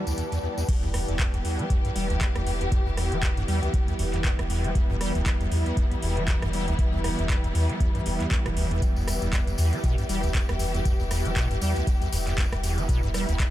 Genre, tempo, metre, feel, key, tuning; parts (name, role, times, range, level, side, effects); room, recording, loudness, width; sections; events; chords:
acid house; 118 BPM; 4/4; swing 57% on 16ths; E minor; A4 = 435 Hz
warm symphonic string section; sustained chords; 0.0-13.5 s; E3 to G4; -32 LUFS; equal; vintage 12-bit sampler grit, sidechain pumping
acid bass, square; riff; 0.0-13.4 s; D2 to G3; -29 LUFS; equal; tube saturation, ensemble chorus, sidechain pumping
airy breathy pad; texture; 0.0-13.5 s; E4 to A5; -35 LUFS; equal; chorus, sidechain pumping
electro analog drum machine; drums; 0.1-13.5 s; crash cymbal, handclaps, hi-hat, rim click; -34 LUFS; equal; overdrive
tambourine; percussion; 0.1-0.7, 8.8-13.5 s; -40 LUFS; left 3 dB
warm sub bass; bass; 0.7-13.5 s; E1 to E2; -30 LUFS; equal; sidechain pumping
electronic kick drum; drums; 0.7-13.5 s; -25 LUFS; equal; overdrive
light reverb; -23 LUFS; side -14 dB against mid
0.7-13.5 A section
drop 0.7-13.5
0.0 Em